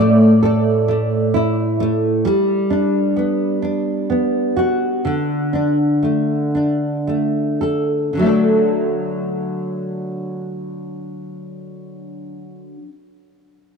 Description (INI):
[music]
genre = pop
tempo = 35-44 BPM (dotted quarters)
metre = 6/8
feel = straight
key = D major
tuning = A4 = 440 Hz
[part]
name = direct-recorded clean electric guitar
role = melody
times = 0.0-1.8 s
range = D5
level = -25 LUFS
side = right 2 dB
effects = tape echo
[part]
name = nylon-string guitar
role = accompaniment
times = 0.0-12.9 s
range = A2 to A4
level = -16 LUFS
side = equal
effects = double-tracked left and right
[sound]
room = moderate plate reverb, RT60 3.6 s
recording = dark, warm production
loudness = -16 LUFS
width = side -5 dB against mid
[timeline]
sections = 0.0-2.2 A section; 2.2-8.2 B section; 8.2-11.6 C section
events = slowing down 2.2-8.2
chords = 0.0 Dsus2/A; 2.2 Gmaj7; 5.0 D5; 8.2 D